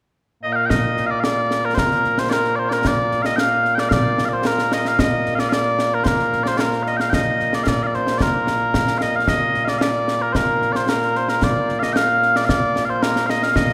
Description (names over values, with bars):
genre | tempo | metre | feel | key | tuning
scottish traditional, Scottish pipe music | 112 BPM | 4/4 | straight | Bb major | A4 = 440 Hz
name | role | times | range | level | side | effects
mellow small bagpipes | melody | 0.4-13.7 s | Bb2 to G5 | -20 LUFS | equal | none
concert snare drum and concert bass drum | drums | 0.7-13.7 s | none | -25 LUFS | equal | none
room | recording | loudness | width
wet concert hall reverb, RT60 2.0 s | recorded in a church or concert hall | -19 LUFS | mono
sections
0.7-13.7 A section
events
none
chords
none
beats
0.17 | 0.70 1.24 1.77 2.31 | 2.84 3.38 3.92 4.45 | 4.99 5.52 6.06 6.59 | 7.13 7.67 8.20 8.74 | 9.27 9.81 10.34 10.88 | 11.41 11.95 12.49 13.02 | 13.56